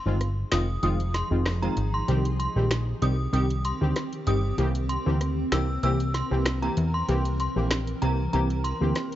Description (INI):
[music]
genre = dancehall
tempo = 96 BPM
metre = 4/4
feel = straight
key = C minor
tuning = A4 = 440 Hz
[part]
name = granular cloud pad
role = sustained chords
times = 0.7-9.2 s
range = Eb3 to Bb4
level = -34 LUFS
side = right 1 dB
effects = built-in reverb
[part]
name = synth brass stab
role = accompaniment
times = 0.1-8.9 s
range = Eb3 to G4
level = -30 LUFS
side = equal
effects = chorus
[part]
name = plucky analog bass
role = bass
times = 0.1-8.9 s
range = F1 to E2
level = -26 LUFS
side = equal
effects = none
[part]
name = afro-pop drum kit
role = drums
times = 0.2-9.2 s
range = finger snaps, hi-hat, rim click, snare drum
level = -31 LUFS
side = equal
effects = none
[part]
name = synth chime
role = melody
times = 0.5-8.8 s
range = Bb5 to E6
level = -33 LUFS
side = equal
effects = ensemble chorus, ping-pong delay
[sound]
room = little or no reverb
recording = worn, warbling old tape, cassette tape, warbly pitch drift, nothing above 7.7 kHz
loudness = -23 LUFS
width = side -13 dB against mid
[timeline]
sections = 0.0-9.2 A section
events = break 0.0-9.2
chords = 0.0 Fm7; 2.1 Cm; 4.6 C7